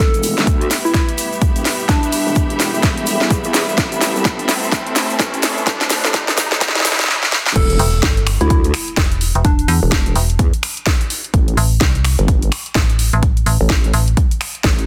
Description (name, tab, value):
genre	bass house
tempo	127 BPM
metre	4/4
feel	swing 60% on 16ths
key	E minor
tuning	A4 = 441 Hz
part	soft struck synth lead	melody	0.0-2.6, 7.6-10.1 s	D4 to A4	-24 LUFS	equal	chorus, cassette tape, delay
part	deep dark ambient pad	sustained chords	0.0-7.1 s	G3 to B4	-33 LUFS	equal	chorus, built-in reverb, sidechain pumping
part	vowel-sweep wobble bass	bass	0.0-14.9 s	E1 to E2	-23 LUFS	equal	chorus, overdrive, sidechain pumping, high-pass filter
part	electronic kick drum	drums	0.0-14.8 s	none	-18 LUFS	equal	overdrive, studio reverb
part	house drum kit	drums	0.0-14.9 s	crash cymbal, finger snaps, hi-hat, snare drum	-21 LUFS	equal	overdrive, studio reverb
part	riser and impact	sound effects	1.7-9.4 s	none	-30 LUFS	equal	none
part	clear studio string section	texture	0.0-7.1 s	B3 to B5	-26 LUFS	equal	sidechain pumping
part	egg shaker	percussion	0.1-7.1 s	none	-29 LUFS	equal	none
part	metallic FM bass	bass	7.8-14.2 s	E1 to E2	-17 LUFS	equal	tube saturation, sidechain pumping
room	light reverb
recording	dense, heavily limited modern master, high-pass filter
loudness	-16 LUFS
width	mono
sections	0.0-7.6 A section; 7.6-14.9 B section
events	build-up 0.0-7.6; drum fill 0.0-7.1, 7.1-7.6; filter sweep 0.0-7.6; drop 7.6-14.9; impact 7.6-9.4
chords	0.0 Em; 3.8 Amadd9; 7.6 N.C.